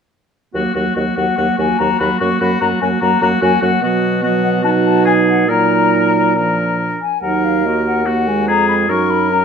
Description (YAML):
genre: quick classical-period movement for wind quintet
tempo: 145 BPM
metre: 4/4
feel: rubato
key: Eb minor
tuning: A4 = 439 Hz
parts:
  - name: warm oboe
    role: second line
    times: 0.5-9.4 s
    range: Gb4 to Bb4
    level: -19 LUFS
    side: left 4 dB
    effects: none
  - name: dark French horn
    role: accompaniment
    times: 0.5-9.4 s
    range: F3 to Bb3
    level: -21 LUFS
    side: equal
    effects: none
  - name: dark clarinet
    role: accompaniment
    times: 0.5-9.4 s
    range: Bb3 to Gb4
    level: -20 LUFS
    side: right 10 dB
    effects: none
  - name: dark bassoon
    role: bass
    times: 0.5-9.4 s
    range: Eb2 to B2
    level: -19 LUFS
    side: right 2 dB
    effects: none
  - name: mellow hollow silver concert flute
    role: melody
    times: 1.0-9.4 s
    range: Eb5 to Db6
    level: -19 LUFS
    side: left 9 dB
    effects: none
room: moderate large studio reverb, RT60 1.2 s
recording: none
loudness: -13 LUFS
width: side -6 dB against mid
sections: 0.5-9.4 A section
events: none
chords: 0.5 Ebm; 2.2 Gb; 3.8 B5; 4.6 B; 5.5 Ebm/Bb; 6.4 Bb; 7.2 Ebm; 8.9 Gb